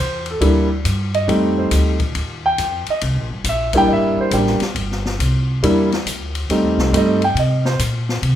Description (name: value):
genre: jazz piano trio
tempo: 138 BPM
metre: 4/4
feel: swing 65% on 8ths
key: unclear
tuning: A4 = 439 Hz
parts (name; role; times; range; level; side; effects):
- dark concert grand piano; melody; 0.0-7.8 s; G3 to G5; -17 LUFS; right 1 dB; none
- upright bass; bass; 0.0-8.4 s; G1 to C3; -20 LUFS; equal; none
- open jazz drum kit; drums; 0.3-8.4 s; hi-hat, kick drum, ride cymbal, snare drum; -25 LUFS; left 3 dB; none
room: light reverb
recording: none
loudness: -15 LUFS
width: side -11 dB against mid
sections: 0.0-8.4 A section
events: grand piano solo 0.0-8.4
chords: 0.0 C9 (rootless); 1.3 F9; 3.0 C9; 6.5 F9 (rootless)